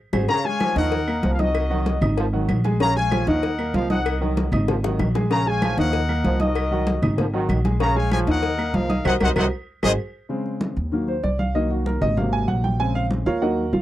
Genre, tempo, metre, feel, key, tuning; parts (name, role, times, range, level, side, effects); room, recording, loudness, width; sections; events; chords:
latin, salsa; 192 BPM; 4/4; straight; Bb minor; A4 = 440 Hz
clear concert grand piano; accompaniment; 0.1-13.8 s; C3 to Eb6; -25 LUFS; equal
upright bass; bass; 0.1-13.8 s; Ab1 to Eb2; -24 LUFS; equal
bongos and cowbell; percussion; 0.1-9.9 s; -31 LUFS; left 9 dB
claves; percussion; 0.1-9.9 s; -38 LUFS; right 5 dB
congas; percussion; 0.1-13.8 s; -26 LUFS; equal
clear trumpet section; melody; 0.3-9.9 s; Gb4 to Bb5; -25 LUFS; left 3 dB
clear trombone section; second line; 0.3-9.9 s; C3 to Ab3; -28 LUFS; right 4 dB
light reverb; dry, close 1970s-style studio recording; -19 LUFS; side -14 dB against mid
0.3-10.3 A section; 10.3-13.8 B section
drum fill 0.0, 4.7-5.3; band accent 0.0, 9.1-10.3; grand piano solo 10.3-13.8
0.3 Bbm7; 0.9 Ebm; 1.5 Cm7b5; 2.2 Ab5; 2.8 Bbm7; 3.4 Ebm; 4.1 Cm7b5; 4.7 Ab5; 5.3 Bbm7; 5.9 Ebm; 6.6 Cm7b5; 7.2 Ab5; 7.8 Bbm7; 8.4 Ebm; 9.1 Cm7b5; 9.7 Ab7; 10.3 Abadd11; 10.9 Ebm; 11.5 Cm7b5; 12.2 Ab7; 12.8 Bbm7